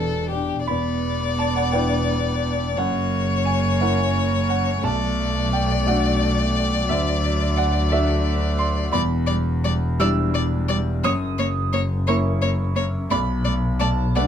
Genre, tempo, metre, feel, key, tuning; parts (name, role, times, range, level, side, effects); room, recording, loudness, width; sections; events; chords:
neoclassical piano and strings; 58 BPM (dotted quarters); 6/8; rubato; E minor; A4 = 440 Hz
clear violin; melody; 0.0-14.2 s; G4 to D5; -25 LUFS; left 6 dB
rich cello; second line; 0.0-14.2 s; E3 to B3; -28 LUFS; right 7 dB
clear concert grand piano; accompaniment; 0.0-14.3 s; B1 to E6; -24 LUFS; right 1 dB
warm double bass; bass; 0.0-14.3 s; E1 to D2; -23 LUFS; equal
little or no reverb; close, detailed microphones; -19 LUFS; side -9 dB against mid
0.7-14.3 A section
0.0 Em7; 2.8 F#7; 4.8 Bm7; 6.9 Dadd9; 8.9 Em7; 11.0 F#7; 13.1 Bm7